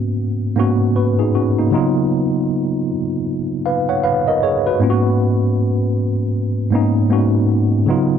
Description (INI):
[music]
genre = R&B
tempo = 78 BPM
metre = 4/4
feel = swing 61% on 16ths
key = G# dorian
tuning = A4 = 442 Hz
[part]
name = tine electric piano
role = solo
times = 0.0-8.2 s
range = G#2 to F#5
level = -15 LUFS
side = equal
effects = overdrive, fast stereo tremolo
[sound]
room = light reverb, digital ambience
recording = dark, warm production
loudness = -15 LUFS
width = side -8 dB against mid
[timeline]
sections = 0.0-8.2 A section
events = none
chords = 0.0 G#m9; 1.7 C#7sus4; 4.8 G#m9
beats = 0.18 0.95 | 1.72 2.49 3.26 4.03 | 4.80 5.57 6.34 7.11 | 7.88